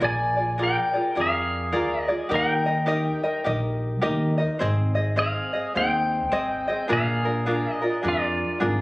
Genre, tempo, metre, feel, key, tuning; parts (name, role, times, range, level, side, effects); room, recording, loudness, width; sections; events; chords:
Hawaiian; 105 BPM; 4/4; swing 63% on 8ths; A4 = 440 Hz
pedal steel guitar; melody; 0.0-8.6 s; F4 to Ab5; -25 LUFS; equal
tenor ukulele; accompaniment; 0.0-8.8 s; C4 to Eb5; -25 LUFS; equal
upright bass; bass; 0.0-8.8 s; Ab1 to F2; -27 LUFS; equal
light reverb, small room reverb; recorded on a phone in the room, club reverb; -21 LUFS; side -21 dB against mid
0.0-8.8 A section
0.0 Bb7; 2.3 Eb; 4.6 Ab; 6.9 Bb7